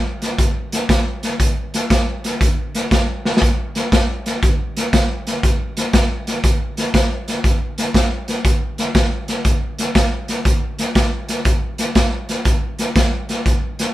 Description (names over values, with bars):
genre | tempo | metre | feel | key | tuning
blues | 120 BPM | 4/4 | swing 67% on 8ths | none | none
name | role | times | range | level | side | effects
raw garage drum kit | drums | 0.2-13.9 s | hi-hat, kick drum, snare drum | -16 LUFS | equal | none
room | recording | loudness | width
light reverb | band playing live in one room | -16 LUFS | side -15 dB against mid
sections
0.0-13.9 A section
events
drum fill 3.2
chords
none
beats
0.39 0.89 | 1.40 1.90 2.41 2.91 | 3.42 3.92 4.43 4.93 | 5.43 5.94 6.44 6.94 | 7.45 7.95 8.45 8.95 | 9.45 9.95 10.45 10.95 | 11.46 11.96 12.46 12.96 | 13.46